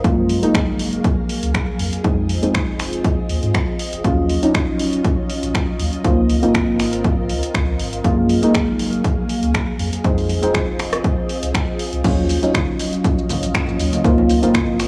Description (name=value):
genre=deep house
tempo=120 BPM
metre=4/4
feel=swing 54% on 16ths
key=Eb dorian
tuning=A4 = 442 Hz
part: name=soft string machine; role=sustained chords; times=0.0-14.9 s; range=Gb3 to F5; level=-27 LUFS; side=equal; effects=ensemble chorus, sidechain pumping
part: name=deep mellow chord stab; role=stabs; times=0.0-14.9 s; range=Gb3 to F4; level=-22 LUFS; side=equal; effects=chorus, sidechain pumping, tape echo
part: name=warm sub bass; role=bass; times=0.0-14.9 s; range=Eb1 to Ab2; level=-26 LUFS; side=equal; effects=sidechain pumping
part: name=electronic kick drum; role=drums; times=0.0-14.7 s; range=none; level=-23 LUFS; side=equal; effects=none
part: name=punchy analog drum machine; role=drums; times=0.0-14.9 s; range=crash cymbal, finger snaps, hi-hat, rim click, shaker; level=-28 LUFS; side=equal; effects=none
part: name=congas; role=percussion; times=12.6-14.6 s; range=none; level=-29 LUFS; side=equal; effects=none
room=light reverb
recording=cassette tape, small room ambience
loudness=-19 LUFS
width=mono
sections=0.0-14.9 A section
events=none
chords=0.0 Gbmaj9; 1.8 Fm7; 4.0 Ebm9; 6.0 Dbmaj13; 8.0 Gbmaj9; 9.8 Fm7; 12.0 Ebm9; 14.0 Dbmaj13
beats=| 0.04 0.54 1.04 1.54 | 2.04 2.54 3.04 3.54 | 4.04 4.54 5.04 5.54 | 6.04 6.54 7.04 7.54 | 8.04 8.54 9.04 9.54 | 10.04 10.54 11.04 11.54 | 12.04 12.54 13.04 13.54 | 14.04 14.54